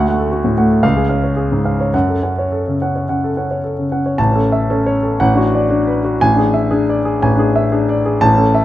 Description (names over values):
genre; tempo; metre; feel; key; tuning
classical, virtuoso piano study; 104-121 BPM; 4/4; rubato; F# minor; A4 = 440 Hz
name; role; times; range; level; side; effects
warm concert grand piano; solo; 0.0-8.6 s; A1 to A5; -13 LUFS; equal; none
room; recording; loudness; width
moderate recital hall reverb, RT60 1.4 s; close, detailed microphones; -13 LUFS; side -14 dB against mid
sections
0.0-4.2 A section; 4.2-8.6 B section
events
none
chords
0.0 D; 0.8 C#; 1.9 F#m; 4.2 A; 5.2 Bm7/A; 6.2 E7/A